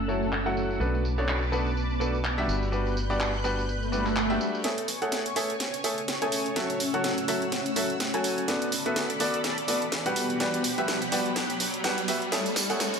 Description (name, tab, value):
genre	piano house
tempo	125 BPM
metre	4/4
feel	swing 57% on 16ths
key	A major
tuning	A4 = 441 Hz
part	analog string pad	sustained chords	0.0-13.0 s	G4 to G6	-35 LUFS	equal	ensemble chorus, phaser
part	organ-like FM bass	bass	0.0-13.0 s	D1 to G2	-31 LUFS	equal	high-pass filter
part	granular cloud pad	texture	0.0-13.0 s	A3 to G#5	-34 LUFS	equal	built-in reverb
part	bright grand piano	riff	0.1-12.9 s	B2 to G#5	-29 LUFS	equal	low-pass filter, ping-pong delay
part	house drum kit	drums	0.1-13.0 s	handclaps, hi-hat, snare drum, tambourine	-31 LUFS	right 1 dB	high-pass filter on perc, low-pass filter on perc, high-pass filter on snare, low-pass filter on snare, high-pass filter on hats, low-pass filter on hats, high-pass filter on room, low-pass filter on room
part	swell and riser	sound effects	3.8-13.0 s	none	-34 LUFS	right 1 dB	none
room	moderate lush hall reverb, RT60 1.8 s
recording	high-pass filter, low-pass filter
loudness	-25 LUFS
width	side -6 dB against mid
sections	0.0-4.6 A section; 4.6-13.0 B section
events	filter sweep 0.0-4.6; swell 3.8-4.6; build-up 4.6-13.0; drum fill 4.6-13.0; riser 4.6-13.0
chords	0.0 F#m7; 0.8 Bm7; 2.5 Gmaj7; 4.6 Amaj7; 6.6 F#m7; 8.5 Bm7; 10.2 Gmaj7; 12.3 Amaj7